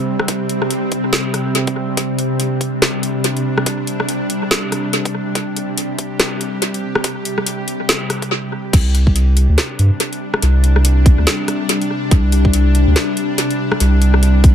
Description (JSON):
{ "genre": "deep dubstep", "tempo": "142 BPM", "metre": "4/4", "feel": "swing 58% on 16ths, half-time", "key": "unclear", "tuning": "A4 = 439 Hz", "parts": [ { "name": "bowed-like drone", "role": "sustained chords", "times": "0.0-14.5 s", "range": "C3 to G4", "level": "-20 LUFS", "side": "equal", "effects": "built-in reverb" }, { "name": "garage drum kit", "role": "drums", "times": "0.2-14.5 s", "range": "crash cymbal, hi-hat, rim click, snare drum", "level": "-19 LUFS", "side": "equal", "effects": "tape echo" }, { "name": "electronic kick drum", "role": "drums", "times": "0.3-14.5 s", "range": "none", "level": "-12 LUFS", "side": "equal", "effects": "high-pass filter on kick" }, { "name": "saturated sub bass", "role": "bass", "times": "8.7-14.5 s", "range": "C2 to G2", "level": "-12 LUFS", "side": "equal", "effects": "none" } ], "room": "light reverb", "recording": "echo-heavy mix", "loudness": "-14 LUFS", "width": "side -9 dB against mid", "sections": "0.0-8.7 A section; 8.7-14.5 B section", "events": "build-up 0.0-8.7; stop 8.3-8.7; drop 8.7-14.5", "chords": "0.0 C5", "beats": "| 0.28 0.71 1.13 1.55 | 1.97 2.40 2.82 3.24 | 3.66 4.09 4.51 4.93 | 5.35 5.78 6.20 6.62 | 7.04 7.47 7.89 8.31 | 8.73 9.16 9.58 10.00 | 10.42 10.85 11.27 11.69 | 12.11 12.54 12.96 13.38 | 13.80 14.23" }